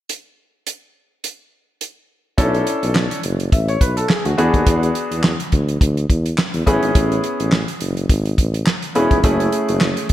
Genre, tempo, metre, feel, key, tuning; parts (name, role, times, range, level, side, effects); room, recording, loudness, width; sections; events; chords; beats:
early-eighties boogie funk; 105 BPM; 4/4; swing 56% on 16ths; B dorian; A4 = 439 Hz
damped 70s drum kit; drums; 0.1-10.1 s; handclaps, hi-hat, kick drum, snare drum; -18 LUFS; equal
warm concert grand piano; accompaniment; 2.4-10.0 s; A3 to E5; -19 LUFS; left 1 dB
warm tuba; bass; 2.4-10.1 s; E1 to E2; -20 LUFS; equal
light reverb, studio reverb; bright 1980s-style digital production; -15 LUFS; side -13 dB against mid
0.1-2.4 A section; 2.4-10.1 B section
0.1 N.C.; 2.4 Bm11; 4.4 E9; 6.7 Amaj9; 9.2 F#m9
| 0.10 0.67 1.24 1.81 | 2.38 2.95 3.52 4.09 | 4.67 5.24 5.81 6.38 | 6.95 7.52 8.10 8.67 | 9.24 9.81